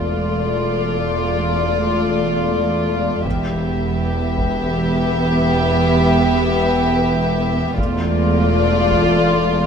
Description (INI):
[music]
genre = cinematic, suspense film score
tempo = 53 BPM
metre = 4/4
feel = straight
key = E phrygian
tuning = A4 = 440 Hz
[part]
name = dark chamber violin section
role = melody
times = 0.0-9.7 s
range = D5 to E5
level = -23 LUFS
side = left 5 dB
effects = none
[part]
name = warm studio violin section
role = second line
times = 0.0-9.7 s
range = F4 to G4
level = -22 LUFS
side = left 1 dB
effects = none
[part]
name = dark symphonic viola section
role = accompaniment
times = 0.0-9.7 s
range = A3 to B3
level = -22 LUFS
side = equal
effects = none
[part]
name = rich symphonic double bass section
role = bass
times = 0.0-9.7 s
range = E1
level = -22 LUFS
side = right 2 dB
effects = none
[part]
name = warm studio cello section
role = bass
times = 0.0-9.7 s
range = E2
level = -22 LUFS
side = right 2 dB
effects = none
[part]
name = taiko ensemble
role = drums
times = 3.2-9.7 s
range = none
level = -27 LUFS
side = equal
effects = none
[sound]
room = moderate scoring stage reverb, RT60 1.9 s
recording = none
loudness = -15 LUFS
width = side -6 dB against mid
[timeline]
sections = 0.0-9.7 A section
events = none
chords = 0.0 Dmadd9/E; 3.2 Em; 7.8 Dmadd9/E